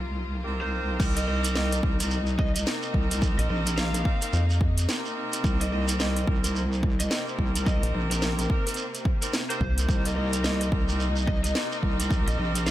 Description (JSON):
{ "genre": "glitch hop", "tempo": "108 BPM", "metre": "4/4", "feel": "swing 60% on 16ths", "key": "C minor", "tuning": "A4 = 436 Hz", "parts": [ { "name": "clear symphonic string section", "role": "sustained chords", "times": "0.0-12.7 s", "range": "C3 to F4", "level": "-36 LUFS", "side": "left 2 dB", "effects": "sidechain pumping" }, { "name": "wobble bass", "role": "bass", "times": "0.0-12.7 s", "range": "Bb1 to C2", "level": "-27 LUFS", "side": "equal", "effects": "chorus" }, { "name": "warm horn section", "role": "stabs", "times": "0.4-12.7 s", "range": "C4 to Bb4", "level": "-33 LUFS", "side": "right 1 dB", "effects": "sidechain pumping, dub echo" }, { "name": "lead guitar through a small cranked amp", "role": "melody", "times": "0.6-12.7 s", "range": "Bb4 to F5", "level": "-36 LUFS", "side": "right 1 dB", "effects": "overdrive, vintage 12-bit sampler grit, dub echo" }, { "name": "drum and bass drum kit", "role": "drums", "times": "1.0-12.7 s", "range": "crash cymbal, hi-hat, rim click, snare drum", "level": "-30 LUFS", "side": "equal", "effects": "none" }, { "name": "electronic kick drum", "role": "drums", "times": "1.0-12.2 s", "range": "none", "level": "-26 LUFS", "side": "equal", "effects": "overdrive" }, { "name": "shekere", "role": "percussion", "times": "1.0-12.7 s", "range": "none", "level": "-36 LUFS", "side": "right 4 dB", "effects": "none" }, { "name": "rubbery square bass", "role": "bass", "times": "3.4-12.4 s", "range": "Bb1 to F2", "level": "-24 LUFS", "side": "equal", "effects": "none" } ], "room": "digital ambience", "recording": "none", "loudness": "-23 LUFS", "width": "side -14 dB against mid", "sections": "1.0-12.7 A section", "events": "drop 1.0-12.7", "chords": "0.0 Cm7", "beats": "0.44 | 1.00 1.55 2.11 2.67 | 3.22 3.78 4.33 4.89 | 5.44 6.00 6.55 7.11 | 7.67 8.22 8.78 9.33 | 9.89 10.44 11.00 11.55 | 12.11 12.66" }